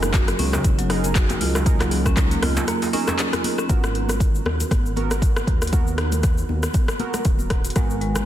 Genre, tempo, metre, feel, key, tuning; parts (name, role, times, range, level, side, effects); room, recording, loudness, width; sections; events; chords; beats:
afro house; 118 BPM; 4/4; swing 56% on 16ths; G# minor; A4 = 437 Hz
warm analog pad; sustained chords; 0.0-3.7 s; F#3 to A#4; -37 LUFS; right 2 dB
warm analog keys; stabs; 0.0-8.3 s; B3 to A#4; -30 LUFS; right 6 dB; chorus, vintage 12-bit sampler grit, sidechain pumping, digital delay
dark detuned saw bass; bass; 0.0-8.3 s; D#1 to D#2; -25 LUFS; equal; sidechain pumping
deep house drum kit; drums; 0.0-8.2 s; handclaps, hi-hat, rim click, shaker; -26 LUFS; left 1 dB; overdrive
congas; percussion; 0.0-8.2 s; -32 LUFS; left 2 dB
marimba with medium hard mallets; arpeggios; 0.1-3.7, 7.8-8.2 s; C#3 to F#4; -26 LUFS; left 1 dB; sidechain pumping, digital delay
electronic kick drum; drums; 0.1-7.9 s; -20 LUFS; equal; overdrive
djembe; percussion; 0.1-3.4 s; -32 LUFS; right 2 dB
light reverb; dense, heavily limited modern master; -18 LUFS; side -12 dB against mid
0.0-3.7 A section; 3.7-8.3 B section
drop 0.0-3.7; break 2.7-3.7
0.0 F#69; 3.7 G#m7
0.14 0.64 1.15 | 1.66 2.17 2.68 3.19 | 3.69 4.20 4.71 5.22 | 5.73 6.24 6.75 7.25 | 7.76